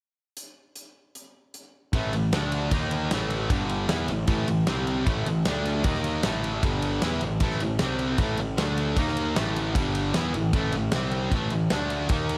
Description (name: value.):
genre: hard rock.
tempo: 154 BPM.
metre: 4/4.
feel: straight.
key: unclear.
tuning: A4 = 436 Hz.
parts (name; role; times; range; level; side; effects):
big rock drum kit; drums; 0.4-12.4 s; hi-hat, kick drum, ride cymbal, snare drum; -30 LUFS; equal; none.
distorted electric guitar; riff; 1.9-12.4 s; G2 to E4; -30 LUFS; equal; overdrive.
fuzz picked electric bass; bass; 1.9-12.4 s; G1 to E2; -32 LUFS; equal; overdrive.
room: light reverb.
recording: none.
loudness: -26 LUFS.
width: mono.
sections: 0.4-1.9 A section; 1.9-12.4 B section.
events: none.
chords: 0.4 N.C.; 1.9 A5; 2.3 D5; 2.7 D#5; 3.1 A5; 3.5 G5; 3.9 A5; 4.7 C5; 5.1 A5; 5.5 D5; 5.8 D#5; 6.2 A5; 6.6 G5; 7.0 A5; 7.8 C5; 8.2 A5; 8.6 D5; 9.0 D#5; 9.4 A5; 9.8 G5; 10.1 A5; 10.9 C5; 11.3 A5; 11.7 D5.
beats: | 0.38 0.77 1.16 1.55 | 1.94 2.33 2.72 3.11 | 3.50 3.89 4.28 4.67 | 5.07 5.46 5.85 6.24 | 6.63 7.02 7.41 7.80 | 8.19 8.58 8.97 9.37 | 9.76 10.15 10.54 10.93 | 11.32 11.71 12.10.